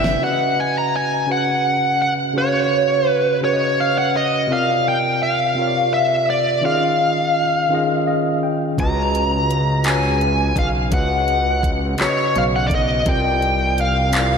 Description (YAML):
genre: slow six-eight R&B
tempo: 56 BPM (dotted quarters)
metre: 6/8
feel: straight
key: unclear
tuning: A4 = 440 Hz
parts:
  - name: smooth overdriven lead guitar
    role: melody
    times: 0.0-14.4 s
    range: Db5 to Bb5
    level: -18 LUFS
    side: equal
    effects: ping-pong delay
  - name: tine electric piano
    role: accompaniment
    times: 0.0-14.4 s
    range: C3 to G5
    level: -22 LUFS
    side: equal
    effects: medium stereo tremolo
  - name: fat analog bass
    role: bass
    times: 0.0-0.2, 8.8-14.4 s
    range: G1 to Db2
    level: -21 LUFS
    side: equal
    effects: none
  - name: smooth R&B drum kit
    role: drums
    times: 0.0-0.2, 8.8-14.3 s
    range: handclaps, hi-hat, kick drum, snare drum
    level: -22 LUFS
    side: equal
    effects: none
room: wet lush hall reverb, RT60 2.0 s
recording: dreamy mix soaked in reverb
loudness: -16 LUFS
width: side -6 dB against mid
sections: 0.2-14.4 A section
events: drum fill 0.0; tine electric piano fill 7.7-8.8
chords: 0.2 Db9sus4; 4.5 C9sus4; 6.6 Eb9sus4; 8.8 Db9sus4; 13.1 C9sus4